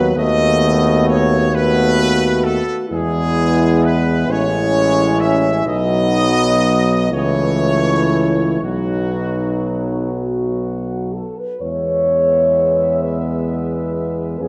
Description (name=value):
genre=classical, hymn-like piece for brass band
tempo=39-45 BPM (dotted quarters)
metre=6/8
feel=rubato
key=E major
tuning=A4 = 440 Hz
part: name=clear trumpet section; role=melody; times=0.0-14.5 s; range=F#4 to G#5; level=-23 LUFS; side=equal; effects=none
part: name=mellow French horn section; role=second line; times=0.0-14.5 s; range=D#4 to C#5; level=-23 LUFS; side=equal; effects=none
part: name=clear euphonium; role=accompaniment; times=0.0-14.5 s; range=A3 to C#4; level=-25 LUFS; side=equal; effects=none
part: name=clear trombone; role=accompaniment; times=0.0-14.5 s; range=E3 to B3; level=-26 LUFS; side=equal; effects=none
part: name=clear tuba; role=bass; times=0.0-14.5 s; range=A1 to E#2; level=-22 LUFS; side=equal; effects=none
room=wet concert hall reverb, RT60 1.8 s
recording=dark, warm production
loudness=-17 LUFS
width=mono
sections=0.0-11.6 A section; 11.6-14.5 B section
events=none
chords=0.2 B7/D#; 2.9 E; 4.3 Amaj7; 5.7 B; 7.1 A/C#; 8.6 B; 11.6 E